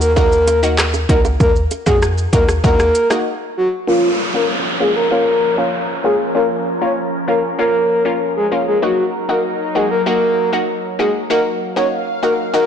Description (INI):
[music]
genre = dancehall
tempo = 97 BPM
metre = 4/4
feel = straight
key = Bb minor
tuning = A4 = 439 Hz
[part]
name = breathy flute-like synth lead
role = melody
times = 0.0-12.7 s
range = F4 to Db5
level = -16 LUFS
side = equal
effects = chorus, low-pass filter, tape echo
[part]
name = analog pluck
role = accompaniment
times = 0.0-12.7 s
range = Bb3 to Gb4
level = -20 LUFS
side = left 1 dB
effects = chorus, sidechain pumping, low-pass filter
[part]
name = clean 808-style bass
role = bass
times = 0.0-2.9 s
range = Db2 to F2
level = -18 LUFS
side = equal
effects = none
[part]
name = pop drum kit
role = drums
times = 0.0-3.2 s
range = handclaps, hi-hat, kick drum, rim click, shaker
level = -17 LUFS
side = equal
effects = overdrive
[part]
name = bongos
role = percussion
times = 0.2-2.8 s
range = none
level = -27 LUFS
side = right 7 dB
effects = none
[part]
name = lush unison pad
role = sustained chords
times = 4.2-12.7 s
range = F3 to F5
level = -24 LUFS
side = right 1 dB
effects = chorus, phaser, sidechain pumping, low-pass filter
[part]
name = downlifter and reverse cymbal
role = sound effects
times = 3.9-12.7 s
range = none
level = -24 LUFS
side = equal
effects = none
[sound]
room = moderate lush hall reverb, RT60 1.9 s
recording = blown-out, overdriven recording, overdrive, nothing above 10.3 kHz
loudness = -14 LUFS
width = side -8 dB against mid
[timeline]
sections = 0.0-3.9 A section; 3.9-12.7 B section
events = break 3.3-3.9; filter sweep 3.9-12.7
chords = 0.0 Ebm; 3.9 Bbm; 8.8 Ebm